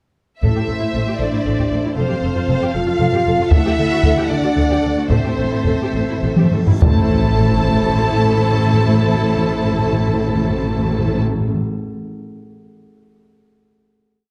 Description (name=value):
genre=cinematic, epic orchestral film score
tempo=66-78 BPM (dotted quarters)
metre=6/8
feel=straight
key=A minor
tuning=A4 = 441 Hz
part: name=warm symphonic violin section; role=melody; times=0.4-11.2 s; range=C5 to A5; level=-27 LUFS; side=equal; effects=none
part: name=warm studio violin section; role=second line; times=0.4-11.2 s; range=A4 to F#5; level=-30 LUFS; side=equal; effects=none
part: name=warm symphonic viola section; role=accompaniment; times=0.4-11.2 s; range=E4 to A4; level=-28 LUFS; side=equal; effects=none
part: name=dark French horn section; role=sustained chords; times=0.4-11.2 s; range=A3 to F4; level=-25 LUFS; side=equal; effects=none
part: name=clear symphonic cello section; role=bass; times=0.4-11.2 s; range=D2 to A2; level=-26 LUFS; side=equal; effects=none
part: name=dark symphonic double bass section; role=bass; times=0.4-11.2 s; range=F1 to D2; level=-23 LUFS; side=equal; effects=none
part: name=taiko ensemble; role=drums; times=0.4-8.0 s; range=none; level=-19 LUFS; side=equal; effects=none
part: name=timpani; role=percussion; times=5.1-11.6 s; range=A2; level=-23 LUFS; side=equal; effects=none
part: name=reverse cymbal and sub drop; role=sound effects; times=6.8-8.6 s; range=none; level=-26 LUFS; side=equal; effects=none
room=moderate scoring stage reverb, RT60 1.6 s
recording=dark, warm production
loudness=-17 LUFS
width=mono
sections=0.4-6.8 theme; 6.8-10.4 final chord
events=slowing down 2.7-6.8; timpani fill 5.1-6.8; drum fill 6.4-6.8; reverse cymbal 6.7; impact 6.8-8.6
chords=0.4 Am; 2.0 F; 3.5 D; 5.1 Am